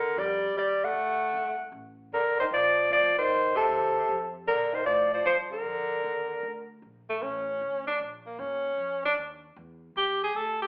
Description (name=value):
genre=jazz, small-group swing and bop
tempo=153 BPM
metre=3/4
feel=swing 67% on 8ths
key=Bb major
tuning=A4 = 440 Hz
part: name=warm soprano saxophone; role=melody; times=0.0-6.7 s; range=A4 to Gb5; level=-25 LUFS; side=equal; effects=none
part: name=breathy tenor saxophone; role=second line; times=0.0-10.7 s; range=C3 to A4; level=-29 LUFS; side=equal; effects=none
part: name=upright bass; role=bass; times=0.0-10.7 s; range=G1 to Bb2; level=-50 LUFS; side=equal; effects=none
room=wet large studio reverb, RT60 0.9 s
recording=band playing live in one room, telephone sound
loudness=-25 LUFS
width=side -28 dB against mid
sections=0.0-6.8 A section; 6.8-10.7 B section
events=tenor saxophone solo 6.8-10.7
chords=0.0 Ebmaj7; 0.9 D7; 2.1 Gm7; 3.3 F7; 4.5 Bbmaj7; 8.0 Bb5; 9.2 Eb